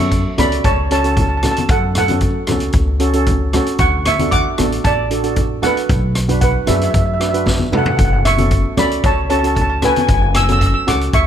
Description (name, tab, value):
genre	calypso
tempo	114 BPM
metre	4/4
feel	straight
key	F# minor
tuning	A4 = 440 Hz
part	steel pan	melody	0.0-11.3 s	G#4 to E6	-18 LUFS	right 2 dB	none
part	steel pan	accompaniment	0.0-11.2 s	C#4 to B4	-21 LUFS	right 2 dB	none
part	upright bass	bass	0.0-11.3 s	F#1 to F#2	-19 LUFS	equal	none
part	congas	percussion	0.0-11.0 s	none	-24 LUFS	left 2 dB	none
part	street-band drum kit	drums	0.1-11.3 s	hi-hat, kick drum, rim click, snare drum, toms	-19 LUFS	equal	none
room	light reverb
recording	close, detailed microphones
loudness	-13 LUFS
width	side -9 dB against mid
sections	0.0-11.3 A section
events	drum fill 7.5-8.0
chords	0.0 F#m; 3.8 D; 5.9 Bm; 8.0 F#m7